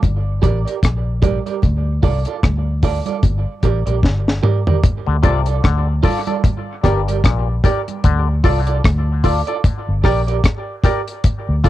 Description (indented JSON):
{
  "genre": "dub reggae",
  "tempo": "75 BPM",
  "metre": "4/4",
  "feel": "swing 58% on 16ths",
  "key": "unclear",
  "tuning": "A4 = 441 Hz",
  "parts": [
    { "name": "vintage muted fingered electric bass", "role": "bass", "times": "0.0-11.7 s", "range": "G1 to D2", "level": "-18 LUFS", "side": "left 1 dB", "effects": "none" },
    { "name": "deep reggae drum kit", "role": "drums", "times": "0.0-11.7 s", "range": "hi-hat, kick drum, rim click, snare drum, toms", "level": "-16 LUFS", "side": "left 1 dB", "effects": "cassette tape" },
    { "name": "congas", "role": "percussion", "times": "0.0-8.0 s", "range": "none", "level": "-30 LUFS", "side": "right 8 dB", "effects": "dub echo" },
    { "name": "electric guitar at the edge of break-up", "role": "accompaniment", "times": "0.4-11.7 s", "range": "F4 to D5", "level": "-24 LUFS", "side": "right 9 dB", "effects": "tremolo, cassette tape, dub echo, plate reverb" },
    { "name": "auto-wah clav", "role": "riff", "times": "5.1-8.3 s", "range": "G2 to D3", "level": "-28 LUFS", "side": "left 10 dB", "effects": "cassette tape, dub echo" },
    { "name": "percussive organ stab", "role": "stabs", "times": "5.2-11.7 s", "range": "F4 to D5", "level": "-24 LUFS", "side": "left 8 dB", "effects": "chorus, phaser, cassette tape, dub echo, plate reverb" }
  ],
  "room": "little or no reverb",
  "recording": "home recording on cassette",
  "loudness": "-15 LUFS",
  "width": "side -14 dB against mid",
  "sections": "0.0-4.8 A section; 4.8-11.7 B section",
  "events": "break 0.0-4.8; drum fill 4.0-4.8; part muted 8.0-11.7",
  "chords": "0.0 Gm; 1.6 Dm; 3.2 Gm; 4.8 Dm; 6.4 Gm; 8.0 Dm; 9.6 Gm"
}